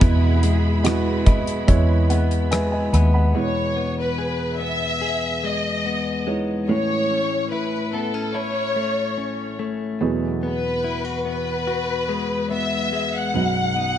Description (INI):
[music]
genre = pop ballad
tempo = 72 BPM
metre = 4/4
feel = straight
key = E major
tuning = A4 = 440 Hz
[part]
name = warm grand piano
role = accompaniment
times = 0.0-14.0 s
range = B1 to B5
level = -26 LUFS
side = right 4 dB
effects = analog delay
[part]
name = warm studio string section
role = sustained chords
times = 0.0-3.3 s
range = E4 to B5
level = -32 LUFS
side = equal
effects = none
[part]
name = direct-recorded clean electric guitar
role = arpeggios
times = 0.0-14.0 s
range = E2 to G#4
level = -27 LUFS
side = left 5 dB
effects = spring reverb, analog delay
[part]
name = vintage muted fingered electric bass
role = bass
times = 0.0-3.3 s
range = D#2 to E2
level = -19 LUFS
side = equal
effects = none
[part]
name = damped 70s drum kit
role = drums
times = 0.0-3.1 s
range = hi-hat, kick drum, rim click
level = -20 LUFS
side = equal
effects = none
[part]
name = warm studio violin section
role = melody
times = 3.4-14.0 s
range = A4 to F#5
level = -24 LUFS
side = left 2 dB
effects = none
[sound]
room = light reverb, small room ambience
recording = echo-heavy mix, nothing above 10.5 kHz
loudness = -19 LUFS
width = side -10 dB against mid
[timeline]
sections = 0.0-3.3 A section; 3.3-14.0 B section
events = grand piano fill 0.8-3.3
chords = 0.0 E; 3.3 Emaj7; 6.7 A; 10.0 Eadd9; 13.3 B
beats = | 0.01 0.85 1.68 2.51 | 3.35 4.18 5.01 5.85 | 6.68 7.51 8.35 9.18 | 10.01 10.85 11.68 12.51 | 13.35